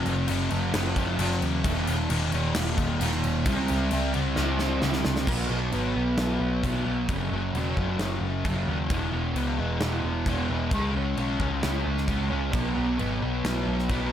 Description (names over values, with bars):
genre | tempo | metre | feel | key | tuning
rock, shoegaze and dream pop | 132 BPM | 4/4 | straight | unclear | A4 = 438 Hz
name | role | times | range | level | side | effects
fuzz guitar | riff | 0.0-14.1 s | E2 to C#4 | -27 LUFS | equal | distortion, analog chorus
vintage muted picked electric bass | bass | 0.0-14.1 s | E1 to D#2 | -30 LUFS | equal | none
gated 80s drum kit | drums | 0.1-14.0 s | crash cymbal, kick drum, snare drum | -31 LUFS | equal | none
room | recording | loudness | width
light reverb, small room ambience | none | -24 LUFS | side -10 dB against mid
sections
0.0-5.3 A section; 5.3-14.1 B section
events
drum fill 4.4-5.3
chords
0.0 F#5; 1.6 E5; 3.5 C#5; 5.3 B5; 7.1 F#5; 8.9 E5; 10.7 C#5; 12.5 B5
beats
0.28 0.73 1.19 | 1.64 2.09 2.55 3.00 | 3.45 3.91 4.36 4.82 | 5.27 5.72 6.18 6.63 | 7.08 7.54 7.99 8.45 | 8.90 9.36 9.81 10.26 | 10.72 11.17 11.63 12.08 | 12.54 12.99 13.45 13.90